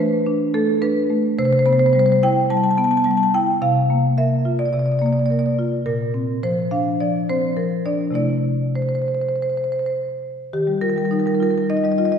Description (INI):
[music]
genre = classical, contemporary piece for solo marimba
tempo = 100-108 BPM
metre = 4/4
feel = straight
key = C major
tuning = A4 = 440 Hz
[part]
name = marimba with medium hard mallets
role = solo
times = 0.0-12.2 s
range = Bb2 to A5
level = -17 LUFS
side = equal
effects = none
[sound]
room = wet scoring stage reverb, RT60 1.5 s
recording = recorded in a church or concert hall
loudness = -17 LUFS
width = side -7 dB against mid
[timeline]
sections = 0.0-10.5 A section; 10.5-12.2 B section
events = none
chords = 0.0 Asus24/E; 1.4 Cmaj7; 3.6 Bb/C; 5.9 Bbadd9; 8.2 C6; 10.5 Ebadd9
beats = 0.26 0.82 | 1.38 1.94 2.50 3.06 | 3.62 4.18 4.74 5.30 | 5.86 6.43 7.00 7.57 | 8.15 8.75 9.34 9.93 | 10.53 11.11 11.69